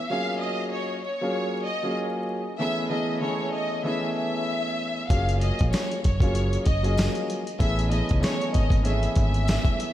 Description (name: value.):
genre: hip hop, boom-bap hip-hop.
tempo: 96 BPM.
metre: 4/4.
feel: swing 56% on 16ths.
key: unclear.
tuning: A4 = 440 Hz.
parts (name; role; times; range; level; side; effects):
clear studio violin section; melody; 0.0-9.9 s; C#5 to E#5; -29 LUFS; left 1 dB; high-pass filter, low-pass filter, diffuse ambient delay.
dark baby grand piano; accompaniment; 0.1-9.9 s; E3 to G#4; -28 LUFS; equal; cassette tape, high-pass filter, low-pass filter.
deep dub fingered electric bass; bass; 5.1-9.6 s; F#1 to C#2; -24 LUFS; equal; none.
dusty soul sampler-style drum kit; drums; 5.1-9.9 s; hi-hat, kick drum, snare drum; -24 LUFS; equal; vintage 12-bit sampler grit.
tambourine; percussion; 5.7-9.6 s; none; -48 LUFS; left 4 dB; none.
room: moderate plate reverb, RT60 3.0 s.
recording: dreamy mix soaked in reverb, vinyl crackle.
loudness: -23 LUFS.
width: side -13 dB against mid.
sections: 0.0-5.1 A section; 5.1-9.9 B section.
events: none.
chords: 0.1 F#maj9; 2.6 Amaj9; 5.1 F#maj9; 7.6 Amaj9.